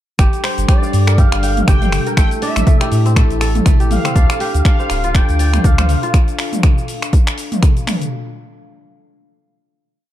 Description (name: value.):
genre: afro house.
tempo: 121 BPM.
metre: 4/4.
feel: swing 57% on 16ths.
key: D minor.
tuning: A4 = 439 Hz.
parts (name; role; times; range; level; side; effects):
dark analog pad; sustained chords; 0.2-8.1 s; G3 to F5; -25 LUFS; left 1 dB; chorus, sidechain pumping.
kora; arpeggios; 0.2-7.5 s; A3 to G5; -24 LUFS; left 1 dB; sidechain pumping, ping-pong delay.
warm sub bass; bass; 0.2-6.0 s; D1 to A2; -16 LUFS; equal; sidechain pumping.
deep house drum kit; drums; 0.2-8.1 s; finger snaps, hi-hat, shaker, toms; -21 LUFS; left 1 dB; none.
electronic kick drum; drums; 0.2-7.7 s; none; -12 LUFS; equal; none.
expressive synth lead; melody; 0.7-6.1 s; D5 to G5; -24 LUFS; right 1 dB; ensemble chorus, ping-pong delay.
room: little or no reverb.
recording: dark, warm production.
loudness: -12 LUFS.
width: side -13 dB against mid.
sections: 0.2-8.1 drop.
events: drop 0.2-8.1.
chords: 0.2 Gm7; 2.2 Am7; 4.2 Dm7.